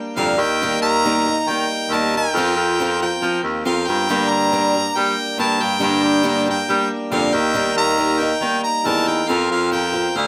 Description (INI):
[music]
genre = folk rock and heartland rock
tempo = 138 BPM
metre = 4/4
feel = straight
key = unclear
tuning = A4 = 440 Hz
[part]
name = picked swing-style acoustic guitar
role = accompaniment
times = 0.0-10.3 s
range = G2 to Bb4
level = -23 LUFS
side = equal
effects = none
[part]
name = bright harmonica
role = melody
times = 0.2-10.3 s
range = F5 to Bb5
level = -24 LUFS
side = equal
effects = plate reverb, digital delay
[part]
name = clear baritone saxophone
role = bass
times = 0.2-10.3 s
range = D2 to G3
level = -23 LUFS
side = equal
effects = none
[sound]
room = moderate large studio reverb, RT60 0.8 s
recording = none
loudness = -19 LUFS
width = mono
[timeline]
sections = 0.0-10.3 A section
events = none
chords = 0.4 Eb; 2.3 Fsus4; 4.1 Gm; 7.3 Eb; 9.3 Fsus4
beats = 0.17 | 0.61 1.04 1.48 1.91 | 2.35 2.78 3.22 3.65 | 4.09 4.52 4.95 5.39 | 5.82 6.25 6.69 7.12 | 7.55 7.99 8.42 8.85 | 9.29 9.72 10.15